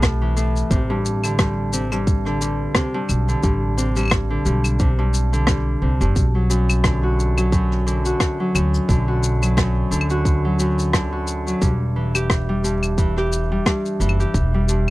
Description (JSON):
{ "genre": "folktronica", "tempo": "88 BPM", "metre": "4/4", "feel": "swing 56% on 16ths", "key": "unclear", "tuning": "A4 = 437 Hz", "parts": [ { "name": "Celtic harp", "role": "arpeggios", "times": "0.0-14.9 s", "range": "F#2 to G4", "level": "-22 LUFS", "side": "equal", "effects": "tape echo" }, { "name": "upright bass", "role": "bass", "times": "0.0-14.9 s", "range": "E1 to D2", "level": "-20 LUFS", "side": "equal", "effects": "none" }, { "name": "electronic kick drum", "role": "drums", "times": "0.0-14.5 s", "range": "none", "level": "-20 LUFS", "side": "equal", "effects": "none" }, { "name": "shaker, rim click and claves", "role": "drums", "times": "0.0-14.9 s", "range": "none", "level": "-23 LUFS", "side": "left 1 dB", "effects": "none" } ], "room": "little or no reverb", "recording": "dry, close 1970s-style studio recording", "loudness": "-17 LUFS", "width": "side -18 dB against mid", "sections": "0.0-14.9 A section", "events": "none", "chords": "0.0 Asus2; 0.7 D7sus4/A; 6.2 Bm; 11.6 Em" }